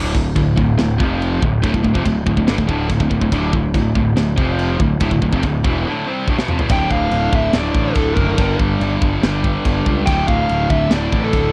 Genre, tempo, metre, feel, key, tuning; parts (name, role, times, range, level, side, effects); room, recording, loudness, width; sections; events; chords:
heavy metal; 142 BPM; 4/4; straight; D minor; A4 = 440 Hz
high-gain distorted guitar; riff; 0.0-11.5 s; D2 to C4; -21 LUFS; equal; distortion
fuzz picked electric bass; bass; 0.0-11.5 s; D1 to C#2; -22 LUFS; equal; overdrive
tight metal drum kit; drums; 0.1-11.4 s; china cymbal, kick drum, snare drum, toms; -22 LUFS; equal
bluesy overdriven lead guitar; melody; 6.7-11.5 s; A4 to G5; -23 LUFS; equal; distortion
little or no reverb; dry, close 1970s-style studio recording; -17 LUFS; mono
0.0-6.7 A section; 6.7-11.5 B section
break 5.9-6.7; drum fill 6.3-6.7
0.0 D5; 1.0 F5; 1.4 D5; 4.4 F5; 4.8 Dm; 8.4 G5; 10.1 Dm